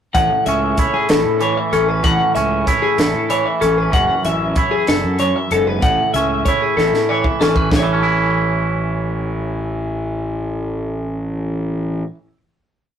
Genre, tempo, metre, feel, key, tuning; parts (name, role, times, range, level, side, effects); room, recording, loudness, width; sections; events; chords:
math rock and midwest emo; 63 BPM (dotted quarters); 6/8; straight; A major; A4 = 440 Hz
twangy electric guitar; accompaniment; 0.1-12.4 s; F#2 to E4; -20 LUFS; right 3 dB
twelve-string electric guitar; arpeggios; 0.1-12.1 s; G#4 to A5; -18 LUFS; left 2 dB
fuzz picked electric bass; bass; 0.1-12.0 s; F#1 to A2; -22 LUFS; equal; overdrive
crisp fusion drum kit; drums; 0.1-7.9 s; hi-hat, kick drum, snare drum; -20 LUFS; equal
light reverb; rough rehearsal-room recording, warm saturation; -15 LUFS; side -8 dB against mid
0.1-7.7 A section; 7.7-11.5 final chord
drum fill 6.8-7.7
0.1 A; 3.9 F#m7; 5.8 A